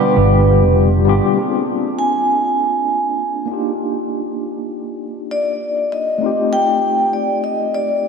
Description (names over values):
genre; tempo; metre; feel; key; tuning
sunset chillout; 99 BPM; 4/4; swing 58% on 16ths; unclear; A4 = 441 Hz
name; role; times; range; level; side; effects
vibraphone with soft mallets; melody; 0.0-8.1 s; B4 to Ab5; -18 LUFS; right 1 dB; diffuse ambient delay
bright tine electric piano; accompaniment; 0.0-8.1 s; D3 to Ab4; -19 LUFS; moving between left 5 dB and right 4 dB; medium stereo tremolo, auto-pan, diffuse ambient delay
hollow-body short-scale fingered electric bass; bass; 0.2-1.2 s; F1 to G1; -14 LUFS; equal; none
room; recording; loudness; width
wet lush hall reverb, RT60 3.0 s; dreamy mix soaked in reverb; -14 LUFS; side -5 dB against mid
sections
0.0-1.4 A section; 1.4-8.1 B section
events
filter sweep on tine electric piano 0.0-1.4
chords
0.0 G7; 1.4 Bb7; 3.5 Ebmaj7; 6.2 F7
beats
0.16 0.77 | 1.37 1.98 2.58 3.19 | 3.80 4.40 5.01 5.62 | 6.22 6.83 7.43 8.04